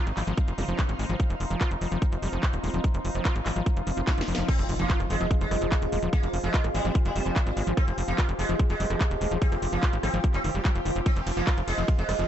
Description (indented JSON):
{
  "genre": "psychedelic trance",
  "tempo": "146 BPM",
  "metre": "4/4",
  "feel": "straight",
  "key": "F minor",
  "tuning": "A4 = 440 Hz",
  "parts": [
    { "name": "bubbling stepped-filter texture", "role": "sustained chords", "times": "0.0-12.3 s", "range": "F3 to G4", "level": "-36 LUFS", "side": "equal", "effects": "chorus, built-in reverb, sidechain pumping" },
    { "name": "overdriven acid bass", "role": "riff", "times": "0.0-12.3 s", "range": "Eb3 to F4", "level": "-35 LUFS", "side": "moving between left 4 dB and right 4 dB", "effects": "auto-pan, sidechain pumping, dub echo" },
    { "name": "granular cloud pad", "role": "texture", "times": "0.1-12.3 s", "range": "C4 to C6", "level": "-37 LUFS", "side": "equal", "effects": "built-in reverb, sidechain pumping" },
    { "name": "tight sequencer bass", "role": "bass", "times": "0.1-12.2 s", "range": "Eb1 to Ab1", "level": "-29 LUFS", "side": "equal", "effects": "none" },
    { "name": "drum and bass drum kit", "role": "drums", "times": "0.1-12.3 s", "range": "crash cymbal, handclaps, hi-hat, ride cymbal, rim click, snare drum", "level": "-35 LUFS", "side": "equal", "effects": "none" },
    { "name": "electronic kick drum", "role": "drums", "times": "0.4-12.0 s", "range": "none", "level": "-24 LUFS", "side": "equal", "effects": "none" },
    { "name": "zap, swell and impact", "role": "sound effects", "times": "0.6-0.7, 3.8-6.1 s", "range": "none", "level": "-36 LUFS", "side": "equal", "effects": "none" },
    { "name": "sitar", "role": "melody", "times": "4.5-12.3 s", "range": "G3 to C4", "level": "-32 LUFS", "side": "right 2 dB", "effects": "phaser, sidechain pumping, dub echo" }
  ],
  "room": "little or no reverb",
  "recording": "dark, warm production, nothing above 8.0 kHz",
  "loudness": "-24 LUFS",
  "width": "side -10 dB against mid",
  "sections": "0.0-4.5 A section; 4.5-12.3 B section",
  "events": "swell 3.8-4.5; drum fill 4.1-4.5; drop 4.5-12.3; impact 4.5-6.1",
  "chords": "0.0 F5",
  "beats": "0.38 0.79 | 1.20 1.61 2.02 2.43 | 2.84 3.25 3.66 4.07 | 4.49 4.90 5.31 5.72 | 6.13 6.54 6.95 7.36 | 7.77 8.18 8.60 9.01 | 9.42 9.83 10.24 10.65 | 11.06 11.47 11.88"
}